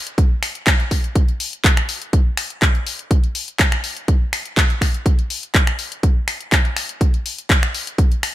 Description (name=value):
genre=house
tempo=123 BPM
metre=4/4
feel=straight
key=none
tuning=none
part: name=house drum kit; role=drums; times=0.1-8.3 s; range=finger snaps, handclaps, hi-hat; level=-20 LUFS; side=left 1 dB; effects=sidechain pumping on hats
part: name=electronic kick drum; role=drums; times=0.2-8.1 s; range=none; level=-16 LUFS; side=equal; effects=none
room=little or no reverb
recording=bright 1980s-style digital production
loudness=-16 LUFS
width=side -14 dB against mid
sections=0.0-8.3 A section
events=none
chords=none